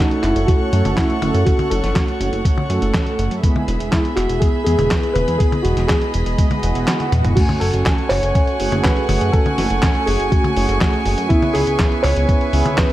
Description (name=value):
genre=italo disco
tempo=122 BPM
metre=4/4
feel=straight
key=F# dorian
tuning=A4 = 441 Hz
part: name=dark concert grand piano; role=melody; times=0.0-12.9 s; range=D#4 to C#5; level=-22 LUFS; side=equal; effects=tape echo, shimmer reverb
part: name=warm chamber string section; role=sustained chords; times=0.0-12.9 s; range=A3 to C#6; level=-25 LUFS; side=equal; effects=shimmer reverb
part: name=mellow synth brass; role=stabs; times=0.0-12.9 s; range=G#3 to G#5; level=-23 LUFS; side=right 2 dB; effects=chorus, cassette tape, shimmer reverb
part: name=dusty soul sampler-style drum kit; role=drums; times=0.1-12.9 s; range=crash cymbal, handclaps, hi-hat, snare drum, toms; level=-23 LUFS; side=equal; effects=none
part: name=chorused synth bass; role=bass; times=0.2-12.8 s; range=E1 to F#2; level=-19 LUFS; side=equal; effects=none
part: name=electronic kick drum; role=drums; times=0.5-12.9 s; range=none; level=-17 LUFS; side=equal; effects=none
part: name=swell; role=sound effects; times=6.6-7.4 s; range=none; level=-28 LUFS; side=right 2 dB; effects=none
room=light reverb, digital ambience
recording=vinyl crackle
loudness=-15 LUFS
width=side -14 dB against mid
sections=0.0-7.4 A section; 7.4-12.9 B section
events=swell 6.6-7.4; kick drops out 6.9-7.4; drum fill 6.9-7.4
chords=0.0 F#m; 3.4 E; 7.4 F#madd9; 11.3 C#m7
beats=0.48 0.97 | 1.47 1.96 2.45 2.94 | 3.43 3.92 4.42 4.91 | 5.40 5.89 6.38 6.88 | 7.37 7.86 8.35 8.84 | 9.34 9.83 10.32 10.81 | 11.30 11.79 12.29 12.78